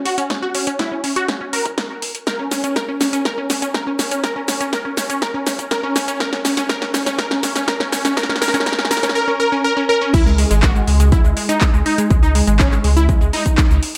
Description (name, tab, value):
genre	progressive house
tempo	122 BPM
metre	4/4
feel	straight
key	C# dorian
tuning	A4 = 440 Hz
part	unison pluck	arpeggios	0.1-14.0 s	G#3 to A#4	-21 LUFS	equal	phaser, cassette tape, sidechain pumping, delay
part	deep house drum kit	drums	0.1-14.0 s	crash cymbal, handclaps, hi-hat, shaker, snare drum	-24 LUFS	equal	overdrive, high-pass filter on hats, high-pass filter on snare, high-pass filter on perc, high-pass filter on cymbals, high-pass filter on room
part	electronic kick drum	drums	0.3-13.7 s	none	-19 LUFS	equal	overdrive, high-pass filter on kick, high-pass filter on room
part	saturated sub bass	bass	10.1-13.8 s	G#1 to C#2	-18 LUFS	equal	sidechain pumping
room	light reverb, digital ambience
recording	none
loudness	-18 LUFS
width	mono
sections	0.0-10.1 A section; 10.1-14.0 B section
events	build-up 0.0-10.1; drum fill 0.0-9.2; drop 10.1-14.0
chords	0.0 N.C.; 10.1 C#sus2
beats	| 0.30 0.79 1.29 1.78 | 2.27 2.76 3.25 3.75 | 4.24 4.73 5.22 5.71 | 6.20 6.70 7.19 7.68 | 8.17 8.66 9.15 9.65 | 10.14 10.63 11.12 11.61 | 12.11 12.60 13.09 13.58